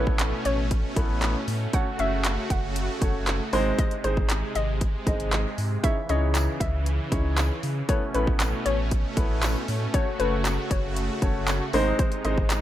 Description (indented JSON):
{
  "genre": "dance-pop",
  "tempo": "117 BPM",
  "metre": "4/4",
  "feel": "straight",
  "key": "unclear",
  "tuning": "A4 = 440 Hz",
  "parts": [
    { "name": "hollow square pluck", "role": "melody", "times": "0.0-12.5 s", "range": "B4 to F#5", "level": "-31 LUFS", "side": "left 2 dB", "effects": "chorus, sidechain pumping, ping-pong delay" },
    { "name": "clear baby grand piano", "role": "accompaniment", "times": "0.0-12.6 s", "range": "G#3 to E5", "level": "-29 LUFS", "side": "equal", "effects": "sidechain pumping" },
    { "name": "filtered supersaw swell", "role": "sustained chords", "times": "0.0-12.6 s", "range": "B2 to F#4", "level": "-32 LUFS", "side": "right 1 dB", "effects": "sidechain pumping" },
    { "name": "sub bass with octave", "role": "bass", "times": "0.0-12.6 s", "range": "F#1 to C#3", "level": "-27 LUFS", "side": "equal", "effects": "sidechain pumping" },
    { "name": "pop drum kit", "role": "drums", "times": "0.1-12.6 s", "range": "handclaps, hi-hat, kick drum", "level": "-27 LUFS", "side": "equal", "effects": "overdrive" },
    { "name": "tambourine", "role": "percussion", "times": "6.3-12.6 s", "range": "none", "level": "-42 LUFS", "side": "left 4 dB", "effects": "none" }
  ],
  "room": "little or no reverb",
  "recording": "rough home demo mix",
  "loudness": "-23 LUFS",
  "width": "side -12 dB against mid",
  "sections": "0.0-12.6 A section",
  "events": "none",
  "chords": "0.0 Aadd9; 1.7 F#m; 3.5 G#; 5.8 C#madd9; 7.9 Aadd9; 9.9 F#m; 11.7 G#"
}